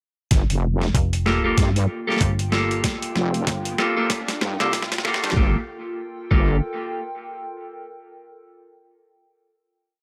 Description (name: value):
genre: glitch hop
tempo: 95 BPM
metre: 4/4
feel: swing 59% on 16ths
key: G minor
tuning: A4 = 440 Hz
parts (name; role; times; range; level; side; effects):
- wobble bass; bass; 0.3-6.6 s; F1 to G2; -23 LUFS; equal; chorus
- boom bap sampler-style drum kit; drums; 0.3-5.4 s; hi-hat, snare drum; -28 LUFS; equal; small room ambience
- electronic kick drum; drums; 0.3-6.5 s; none; -24 LUFS; equal; small room ambience
- riser; sound effects; 2.4-5.4 s; none; -38 LUFS; equal; none
- warbly tape-like pad; texture; 1.8-7.9 s; Bb3 to G5; -36 LUFS; equal; chorus, built-in reverb, phaser, sidechain pumping
- slap-like FM bass; bass; 0.9-5.3 s; F1 to G2; -27 LUFS; equal; tube saturation
- clean electric guitar; stabs; 1.3-6.6 s; Bb3 to A4; -27 LUFS; equal; vintage 12-bit sampler grit, sidechain pumping, low-pass filter, analog delay
room: light reverb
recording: dry, gritty hardware recording, high-pass filter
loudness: -22 LUFS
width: mono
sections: 0.3-5.4 build; 5.4-7.9 final chord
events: build-up 0.3-5.4; drum fill 0.3-5.4; filter sweep 0.3-5.4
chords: 0.3 Gm9